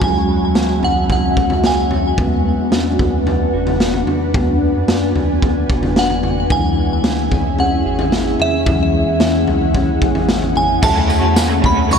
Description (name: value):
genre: dream pop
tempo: 111 BPM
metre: 4/4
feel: straight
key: unclear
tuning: A4 = 437 Hz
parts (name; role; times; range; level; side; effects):
- glassy synth bell; melody; 0.0-2.0, 6.0-12.0 s; E5 to C#6; -20 LUFS; right 1 dB; chorus, tremolo, ping-pong delay
- ethereal airy pad; sustained chords; 0.0-12.0 s; D3 to G#5; -20 LUFS; equal; ensemble chorus, built-in reverb
- mellow electric guitar; arpeggios; 0.0-12.0 s; E3 to G#4; -22 LUFS; left 2 dB; wide subtle chorus, ping-pong delay
- saturated sub bass; bass; 0.0-12.0 s; F#1 to F#2; -22 LUFS; equal; none
- raw garage drum kit; drums; 0.0-12.0 s; crash cymbal, kick drum, snare drum, tambourine, toms; -18 LUFS; equal; none
- soft synth bell; texture; 0.0-0.8, 7.3-12.0 s; E5 to C#6; -35 LUFS; equal; none
- raw garage guitar; accompaniment; 10.8-12.0 s; D3 to F#4; -22 LUFS; right 3 dB; overdrive, tremolo, ensemble chorus
room: wet huge ambient reverb, RT60 8.2 s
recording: dreamy mix soaked in reverb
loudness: -13 LUFS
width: side -6 dB against mid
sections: 0.0-10.8 A section; 10.8-12.0 B section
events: none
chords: 0.0 F#sus2/C#; 2.2 Bm; 6.5 C#m; 10.8 Dmaj7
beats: | 0.02 0.56 1.10 1.64 | 2.18 2.72 3.26 3.80 | 4.34 4.88 5.42 5.96 | 6.51 7.05 7.59 8.13 | 8.67 9.21 9.75 10.29 | 10.83 11.37 11.91